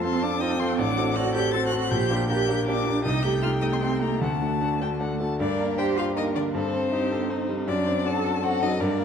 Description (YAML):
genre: quick classical-period movement for piano quartet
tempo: 159 BPM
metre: 3/4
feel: straight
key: G minor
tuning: A4 = 440 Hz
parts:
  - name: rich violin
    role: melody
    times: 0.0-9.0 s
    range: C5 to A6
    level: -30 LUFS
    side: left 8 dB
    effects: none
  - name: rich cello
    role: second line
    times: 0.0-9.0 s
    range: A3 to A4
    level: -29 LUFS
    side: right 8 dB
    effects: none
  - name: warm violin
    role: second line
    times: 0.0-9.0 s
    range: D4 to A5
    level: -33 LUFS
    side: left 3 dB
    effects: none
  - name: clear concert grand piano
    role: accompaniment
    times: 0.0-9.0 s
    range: A1 to A4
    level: -25 LUFS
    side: equal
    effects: none
room: wet recital hall reverb, RT60 1.7 s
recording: dark, warm production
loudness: -22 LUFS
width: side -7 dB against mid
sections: 0.0-5.4 A section; 5.4-9.0 B section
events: none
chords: 0.0 F; 0.8 D7/A; 1.9 Gm/Bb; 3.0 Am7b5/C; 4.2 D; 5.4 Gm; 6.5 Am7b5/G; 7.7 D7/F#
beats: 0.04 0.41 | 0.79 1.16 1.53 | 1.91 2.29 2.67 | 3.05 3.43 3.82 | 4.21 4.61 5.00 | 5.40 5.78 6.17 | 6.54 6.92 7.30 | 7.68 8.05 8.43 | 8.80